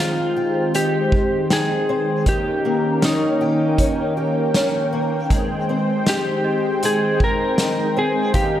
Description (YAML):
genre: dream pop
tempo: 79 BPM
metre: 4/4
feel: straight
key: Ab major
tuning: A4 = 440 Hz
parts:
  - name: electric slide guitar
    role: melody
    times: 0.0-8.6 s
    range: Eb4 to Bb4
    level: -21 LUFS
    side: equal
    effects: tape echo
  - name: warm analog pad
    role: sustained chords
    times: 0.0-8.6 s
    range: Eb3 to G5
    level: -22 LUFS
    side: equal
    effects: chorus
  - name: fingerpicked twelve-string acoustic guitar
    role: arpeggios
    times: 0.0-8.6 s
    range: Eb3 to G4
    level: -25 LUFS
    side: left 2 dB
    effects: ensemble chorus, tape echo
  - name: worn celesta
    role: texture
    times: 0.0-8.6 s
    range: Eb5 to Bb5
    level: -33 LUFS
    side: left 2 dB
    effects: tape echo
  - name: vintage drum kit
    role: drums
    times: 0.7-8.5 s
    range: hi-hat, kick drum, snare drum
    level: -21 LUFS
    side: equal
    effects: none
room: moderate lush hall reverb, RT60 2.2 s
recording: big arena sound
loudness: -17 LUFS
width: side -11 dB against mid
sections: 0.0-8.6 A section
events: none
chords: 0.0 Abmaj7; 2.3 Eb7; 5.3 Abmaj7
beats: 0.74 1.50 | 2.26 3.02 3.78 4.54 | 5.30 6.06 6.82 7.58 | 8.34